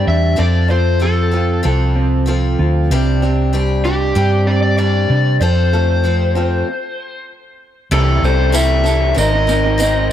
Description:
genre	folk rock and heartland rock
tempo	96 BPM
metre	4/4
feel	straight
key	C major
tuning	A4 = 440 Hz
part	overdriven slide guitar	melody	0.0-10.1 s	G4 to E5	-19 LUFS	left 2 dB	tape echo
part	picked acoustic archtop guitar	accompaniment	0.0-10.1 s	C3 to Bb4	-22 LUFS	left 4 dB	none
part	electric guitar through a small old amp	riff	0.0-10.1 s	F2 to Bb4	-21 LUFS	right 2 dB	wide subtle chorus
part	hollow-body short-scale fingered electric bass	bass	0.0-10.1 s	Ab1 to C3	-15 LUFS	equal	none
part	tambourine	percussion	8.2-9.9 s	none	-27 LUFS	right 5 dB	none
room	light reverb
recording	none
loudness	-13 LUFS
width	side -10 dB against mid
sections	0.0-7.9 A section; 7.9-10.1 B section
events	stop 6.7-7.9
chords	0.4 F; 2.9 Csus2; 5.4 F; 7.9 C6; 9.2 Abadd9

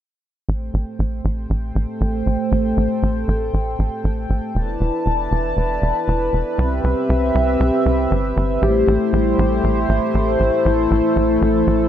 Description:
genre	synthwave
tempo	118 BPM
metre	4/4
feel	straight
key	A minor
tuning	A4 = 440 Hz
part	chorused pulse-width pad	sustained chords	0.5-11.9 s	A3 to A5	-20 LUFS	equal	none
part	tight sequencer bass	bass	0.5-11.9 s	E1 to C2	-20 LUFS	equal	none
part	soft octave-layered synth lead	melody	8.6-11.9 s	E4 to G4	-20 LUFS	left 2 dB	chorus, phaser, digital delay
room	light reverb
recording	none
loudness	-17 LUFS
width	side -10 dB against mid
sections	0.5-8.6 A section; 8.6-11.9 B section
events	filter sweep on analog synth bass 0.5-8.6; filter sweep on analog synth pad 0.5-8.6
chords	0.5 Am7; 4.6 E7sus4; 6.6 Cmaj7; 8.6 Am7

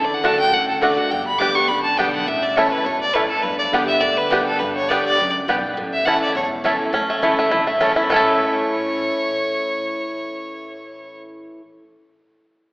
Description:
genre	bluegrass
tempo	206 BPM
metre	4/4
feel	swing 54% on 8ths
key	A mixolydian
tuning	A4 = 439 Hz
part	clear fiddle	melody	0.0-11.2 s	G4 to D6	-21 LUFS	equal	none
part	picked steel-string acoustic guitar	accompaniment	0.0-11.6 s	E2 to G4	-24 LUFS	equal	none
part	upright bass	bass	0.0-11.4 s	E1 to D2	-38 LUFS	equal	none
part	bluegrass banjo	arpeggios	0.2-11.4 s	A3 to A4	-22 LUFS	equal	none
part	mandolin	stabs	0.2-11.6 s	A3 to A5	-24 LUFS	right 1 dB	none
room	wet concert hall reverb, RT60 1.9 s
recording	recorded in a church or concert hall, AM radio sound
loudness	-16 LUFS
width	side -25 dB against mid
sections	0.0-6.9 A section; 6.9-8.1 B section; 8.1-10.4 C section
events	none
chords	0.0 D; 1.1 G; 2.3 A; 3.4 G; 5.8 A

